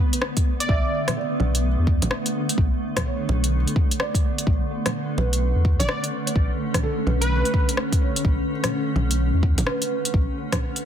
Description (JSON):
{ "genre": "future garage", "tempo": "127 BPM", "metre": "4/4", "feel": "swing 63% on 16ths", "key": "B minor", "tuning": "A4 = 440 Hz", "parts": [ { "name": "felt-muted upright piano", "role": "accompaniment", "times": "0.0-10.8 s", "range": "A4 to E5", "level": "-33 LUFS", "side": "right 6 dB", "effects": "sidechain pumping, analog delay" }, { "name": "granular cloud pad", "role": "sustained chords", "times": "0.0-10.8 s", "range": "D3 to C#4", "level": "-27 LUFS", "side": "equal", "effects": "built-in reverb, sidechain pumping" }, { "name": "deep house drum kit", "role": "drums", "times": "0.1-10.8 s", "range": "bongos, hi-hat, rim click", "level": "-26 LUFS", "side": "equal", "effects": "soft clipping on snare" }, { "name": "electronic kick drum", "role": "drums", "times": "0.4-10.6 s", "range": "none", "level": "-22 LUFS", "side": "equal", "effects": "none" }, { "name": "plucky unison lead", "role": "melody", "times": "0.6-1.1, 5.8-7.7 s", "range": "B4 to D5", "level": "-30 LUFS", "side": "right 1 dB", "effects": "vintage 12-bit sampler grit, analog delay" }, { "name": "warm sub bass", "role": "bass", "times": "0.7-10.3 s", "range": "F#1 to E2", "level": "-22 LUFS", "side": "equal", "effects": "tube saturation, sidechain pumping" } ], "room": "light reverb", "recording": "dense, heavily limited modern master", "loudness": "-20 LUFS", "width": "side -9 dB against mid", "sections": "0.0-10.8 A section", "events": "none", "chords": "0.0 Bm9" }